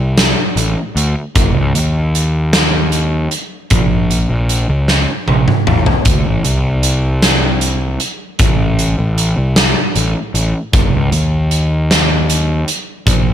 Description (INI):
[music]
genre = quiet-loud alternative rock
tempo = 51 BPM (dotted quarters)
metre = 6/8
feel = straight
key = unclear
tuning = A4 = 440 Hz
[part]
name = fuzz picked electric bass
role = bass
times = 0.0-13.3 s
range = F#1 to Eb2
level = -14 LUFS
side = equal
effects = overdrive
[part]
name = huge arena drum kit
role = drums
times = 0.2-13.2 s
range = hi-hat, kick drum, snare drum, toms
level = -14 LUFS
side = right 1 dB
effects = none
[sound]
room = light reverb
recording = none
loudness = -12 LUFS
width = side -10 dB against mid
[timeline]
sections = 0.0-13.3 A section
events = drum fill 4.9-6.1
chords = none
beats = 0.18 | 1.35 2.53 | 3.71 4.88 | 6.05 7.22 | 8.39 9.56 | 10.73 11.90 | 13.06